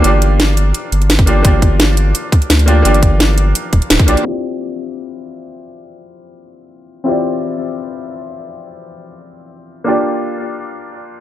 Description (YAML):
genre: liquid drum and bass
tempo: 171 BPM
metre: 4/4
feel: straight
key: D minor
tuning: A4 = 441 Hz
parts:
  - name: bright baby grand piano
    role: accompaniment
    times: 0.0-11.2 s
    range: Bb3 to D5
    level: -18 LUFS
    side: left 1 dB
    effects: low-pass filter, ping-pong delay
  - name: saturated sub bass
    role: bass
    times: 0.0-4.2 s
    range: D1 to D2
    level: -12 LUFS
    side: equal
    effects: none
  - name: drum and bass drum kit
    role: drums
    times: 0.0-4.2 s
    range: hi-hat, snare drum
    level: -16 LUFS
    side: equal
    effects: overdrive, low-pass filter on hats, studio ambience, low-pass filter on snare
  - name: electronic kick drum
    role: drums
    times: 1.2-4.1 s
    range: none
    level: -11 LUFS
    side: equal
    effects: overdrive, studio ambience
room: digital ambience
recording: low-pass filter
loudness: -11 LUFS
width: side -13 dB against mid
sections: 0.0-4.3 A section; 4.3-11.2 B section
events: band accent 3.9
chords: 0.0 Gm7; 4.3 Dm11; 9.9 Gm7